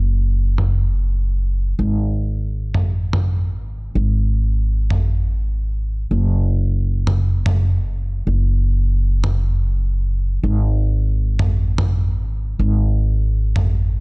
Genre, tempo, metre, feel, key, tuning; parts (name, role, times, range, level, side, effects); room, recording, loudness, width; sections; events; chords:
organic downtempo; 111 BPM; 4/4; swing 56% on 16ths; A4 = 440 Hz
upright bass; bass; 0.0-14.0 s; F#1 to G#1; -17 LUFS; equal
electronic toms; drums; 0.6-13.7 s; -18 LUFS; equal; overdrive, low-pass filter on perc, studio reverb, low-pass filter on hats, low-pass filter on toms, low-pass filter on snare
little or no reverb; dry, gritty hardware recording, nothing above 10.7 kHz; -16 LUFS; side -34 dB against mid
0.0-14.0 A section